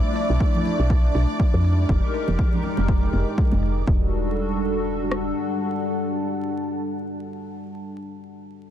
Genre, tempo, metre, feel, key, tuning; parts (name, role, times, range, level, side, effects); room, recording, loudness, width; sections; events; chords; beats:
deep house; 121 BPM; 4/4; swing 57% on 16ths; A4 = 441 Hz
hollow soft pad; sustained chords; 0.0-7.7 s; G3 to D5; -28 LUFS; equal; ensemble chorus, sidechain pumping
clear studio violin section; texture; 0.0-3.9 s; D5 to D6; -36 LUFS; right 1 dB; sidechain pumping
deep dark ambient pad; texture; 0.0-7.9 s; G3 to Bb5; -29 LUFS; left 2 dB; chorus, built-in reverb, sidechain pumping
electronic hi-hat; drums; 0.2-3.7 s; -51 LUFS; right 3 dB
woody FM bass; bass; 0.3-5.3 s; E1 to F2; -22 LUFS; equal; tube saturation, sidechain pumping
deep house drum kit; drums; 0.4-5.2 s; kick drum, rim click; -21 LUFS; equal
congas; percussion; 0.5-3.6 s; -31 LUFS; right 3 dB; analog delay
light reverb; echo-heavy mix, vinyl crackle; -20 LUFS; side -10 dB against mid
0.0-3.9 A section; 3.9-7.8 B section
filter sweep on FM bass 0.0-3.9
0.0 Bm7; 1.6 Fm11; 3.9 Em11
0.40 0.90 1.40 | 1.89 2.39 2.88 3.38 | 3.88 4.37 4.87 5.36 | 5.86 6.35 6.85 7.35